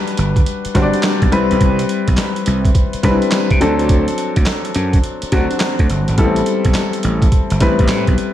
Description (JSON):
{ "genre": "R&B, new jack swing", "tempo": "105 BPM", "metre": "4/4", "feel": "swing 65% on 16ths", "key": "unclear", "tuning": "A4 = 441 Hz", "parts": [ { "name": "warm grand piano", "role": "accompaniment", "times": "0.0-8.3 s", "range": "F#3 to D5", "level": "-17 LUFS", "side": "left 2 dB", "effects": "none" }, { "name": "boom bap sampler-style drum kit", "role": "drums", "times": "0.1-8.3 s", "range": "handclaps, hi-hat, kick drum, snare drum", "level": "-16 LUFS", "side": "right 1 dB", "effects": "none" }, { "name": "gritty slap bass", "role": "bass", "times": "0.2-8.2 s", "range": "G1 to C3", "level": "-18 LUFS", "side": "right 1 dB", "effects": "overdrive" } ], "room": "moderate plate reverb, RT60 1.8 s", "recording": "dreamy mix soaked in reverb", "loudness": "-13 LUFS", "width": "side -12 dB against mid", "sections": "0.0-8.3 A section", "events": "none", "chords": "0.0 Gmaj7; 1.3 Cmaj7; 3.6 D7; 6.2 Am7" }